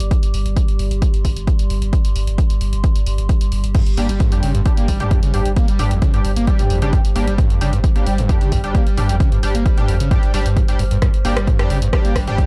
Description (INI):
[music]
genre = driving peak-time techno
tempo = 132 BPM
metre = 4/4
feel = straight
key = unclear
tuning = A4 = 441 Hz
[part]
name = saturated sub bass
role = bass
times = 0.0-12.4 s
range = G1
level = -23 LUFS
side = equal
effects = sidechain pumping, low-pass filter
[part]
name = punchy analog drum machine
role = drums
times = 0.0-12.5 s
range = crash cymbal, hi-hat, rim click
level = -32 LUFS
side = equal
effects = sidechain pumping on hats, sidechain pumping on cymbals
[part]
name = warbly tape-like pad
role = texture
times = 0.0-12.5 s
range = G3 to F6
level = -32 LUFS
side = equal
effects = chorus, built-in reverb, sidechain pumping
[part]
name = electronic kick drum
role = drums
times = 0.1-12.5 s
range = none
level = -18 LUFS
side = equal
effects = none
[part]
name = screaming distorted acid line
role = riff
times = 3.7-12.5 s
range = G1 to Bb3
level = -24 LUFS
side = equal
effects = distortion, lush chorus, cassette tape, sidechain pumping
[part]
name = sync-sweep polysynth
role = stabs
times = 4.0-12.5 s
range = G3 to G4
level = -28 LUFS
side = equal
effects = chorus, cassette tape, sidechain pumping, dub echo
[sound]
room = digital ambience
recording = dark, warm production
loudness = -17 LUFS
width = mono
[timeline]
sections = 0.0-12.5 A section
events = none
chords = 0.0 G5